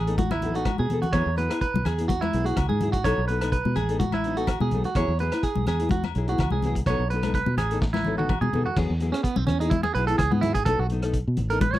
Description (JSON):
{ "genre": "highlife guitar band", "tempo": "126 BPM", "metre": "4/4", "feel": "swing 53% on 16ths", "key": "E major", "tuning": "A4 = 440 Hz", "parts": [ { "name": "clean electric guitar", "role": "arpeggios", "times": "0.0-11.8 s", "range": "B3 to C#5", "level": "-27 LUFS", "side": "right 5 dB", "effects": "none" }, { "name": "fingered electric bass", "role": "bass", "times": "0.0-11.8 s", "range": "A1 to B2", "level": "-26 LUFS", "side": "equal", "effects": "none" }, { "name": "nylon-string guitar", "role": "accompaniment", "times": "0.1-11.7 s", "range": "F#3 to A4", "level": "-30 LUFS", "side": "left 4 dB", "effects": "none" }, { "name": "vintage drum kit", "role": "drums", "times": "0.1-11.8 s", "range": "crash cymbal, hi-hat, kick drum, rim click, snare drum, toms", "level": "-28 LUFS", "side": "equal", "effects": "none" }, { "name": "congas", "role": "percussion", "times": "0.2-11.8 s", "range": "none", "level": "-29 LUFS", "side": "left 4 dB", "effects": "none" }, { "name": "agogo bells", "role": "percussion", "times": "0.3-8.4 s", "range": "none", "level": "-38 LUFS", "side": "left 16 dB", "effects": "none" } ], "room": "little or no reverb", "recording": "dry, close 1970s-style studio recording", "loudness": "-22 LUFS", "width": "side -14 dB against mid", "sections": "0.0-8.8 A section; 8.8-11.8 B section", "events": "drum fill 0.7-1.1, 7.8-8.8; clean electric guitar solo 8.8-11.8", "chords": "0.0 B7; 1.1 Eadd9; 3.0 B7; 5.0 Eadd9; 6.9 B7; 8.8 Eadd9; 10.7 B7" }